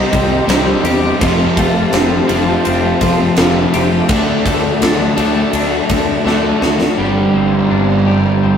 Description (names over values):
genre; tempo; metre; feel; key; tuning
rock, shoegaze and dream pop; 83 BPM; 4/4; straight; unclear; A4 = 439 Hz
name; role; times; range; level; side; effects
dark analog pad; sustained chords; 0.0-8.6 s; F#4 to C6; -22 LUFS; equal; chorus
twelve-string electric guitar; arpeggios; 0.0-8.6 s; F3 to G4; -21 LUFS; left 5 dB; none
crunchy overdriven guitar; riff; 0.0-8.6 s; F2 to D4; -20 LUFS; left 1 dB; none
overdriven electric guitar; riff; 0.0-8.6 s; F2 to Eb4; -21 LUFS; left 5 dB; none
overdriven semi-hollow guitar; riff; 0.0-8.6 s; F2 to G4; -17 LUFS; right 3 dB; none
modern bright fingered electric bass; bass; 0.1-8.6 s; F1 to E2; -22 LUFS; equal; none
huge arena drum kit; drums; 0.1-7.0 s; kick drum, ride cymbal, snare drum; -17 LUFS; equal; none
room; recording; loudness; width
wet stone room reverb, RT60 1.0 s; rough rehearsal-room recording; -11 LUFS; side -8 dB against mid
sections
0.0-7.0 A section; 7.0-8.6 B section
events
drum fill 6.3-7.0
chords
0.0 Cm; 1.2 Fadd9; 4.1 D; 7.0 Gsus4